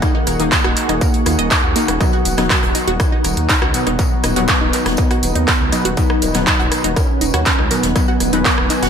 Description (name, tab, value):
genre	melodic techno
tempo	121 BPM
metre	4/4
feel	straight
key	unclear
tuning	A4 = 440 Hz
part	mellow synth brass	melody	0.0-8.9 s	Bb3 to F#4	-23 LUFS	right 1 dB	chorus, sidechain pumping, ping-pong delay
part	deep dark ambient pad	sustained chords	0.0-8.9 s	Eb4 to Ab5	-25 LUFS	right 1 dB	chorus, built-in reverb, sidechain pumping
part	synth brass stab	stabs	0.0-8.9 s	B2 to Eb4	-24 LUFS	left 4 dB	chorus, sidechain pumping, digital delay
part	analog drone	drone	0.7-8.9 s	Eb3 to Eb4	-32 LUFS	left 1 dB	none
part	electronic kick drum	drums	0.0-8.6 s	none	-18 LUFS	equal	distortion, overdrive, studio reverb
part	jazz brush drum kit	drums	0.0-8.9 s	hi-hat, snare drum, tambourine	-29 LUFS	equal	sidechain pumping on hats, high-pass filter on hats, studio reverb, high-pass filter on snare, sidechain pumping on perc, high-pass filter on perc, high-pass filter on room, gated reverb
part	techno drum kit	drums	0.0-8.9 s	handclaps, hi-hat, rim click	-19 LUFS	right 1 dB	overdrive, studio reverb, gated reverb
part	wide unison pluck	arpeggios	0.1-8.9 s	Bb3 to Eb6	-24 LUFS	right 1 dB	sidechain pumping, digital delay
part	swelling detuned saw bass	bass	0.3-8.9 s	Eb1 to Eb2	-21 LUFS	equal	sidechain pumping
room	light reverb, small room ambience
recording	bright 1980s-style digital production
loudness	-13 LUFS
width	side -7 dB against mid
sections	0.0-8.9 A section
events	none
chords	0.0 Ebm; 2.0 B/D#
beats	| 0.02 0.52 1.01 1.51 | 2.01 2.50 3.00 3.49 | 3.99 4.49 4.98 5.48 | 5.97 6.47 6.96 7.46 | 7.96 8.45